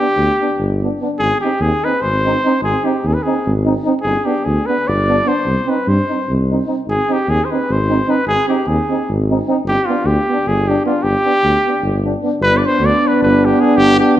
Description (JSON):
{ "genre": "balkan folk, Balkan brass band", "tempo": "299 BPM (eighths)", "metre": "7/8", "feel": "straight", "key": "G phrygian dominant", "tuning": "A4 = 441 Hz", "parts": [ { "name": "mellow trumpet", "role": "melody", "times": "0.0-14.2 s", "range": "F4 to D5", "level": "-17 LUFS", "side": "equal", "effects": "none" }, { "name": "clear euphonium", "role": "accompaniment", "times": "0.0-14.2 s", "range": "D4 to Eb4", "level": "-21 LUFS", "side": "left 3 dB", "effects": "none" }, { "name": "warm euphonium", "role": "accompaniment", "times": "0.0-14.2 s", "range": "B3 to C4", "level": "-21 LUFS", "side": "right 5 dB", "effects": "none" }, { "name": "mellow tuba", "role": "bass", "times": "0.2-14.2 s", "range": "G1 to G2", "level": "-18 LUFS", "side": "equal", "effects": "none" } ], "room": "wet recital hall reverb, RT60 1.5 s", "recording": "dark, warm production", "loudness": "-13 LUFS", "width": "side -12 dB against mid", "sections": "0.0-1.2 A section; 1.2-12.4 A section; 12.4-14.2 B section", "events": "speeding up 0.0-14.2", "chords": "0.0 G; 1.2 Ab; 4.0 G; 5.4 Cm; 6.9 Ab; 9.7 G", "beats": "0.16 0.36 0.57 0.77 0.98 | 1.18 1.39 1.59 1.79 2.00 2.20 2.41 | 2.61 2.81 3.02 3.22 3.42 3.63 3.83 | 4.03 4.23 4.44 4.64 4.84 5.04 5.25 | 5.45 5.65 5.85 6.05 6.25 6.46 6.66 | 6.86 7.06 7.26 7.46 7.66 7.86 8.06 | 8.26 8.46 8.66 8.86 9.06 9.26 9.46 | 9.65 9.85 10.05 10.25 10.45 10.64 10.84 | 11.04 11.23 11.43 11.62 11.82 12.02 12.21 | 12.41 12.60 12.80 12.99 13.19 13.38 13.57 | 13.77 13.96 14.16" }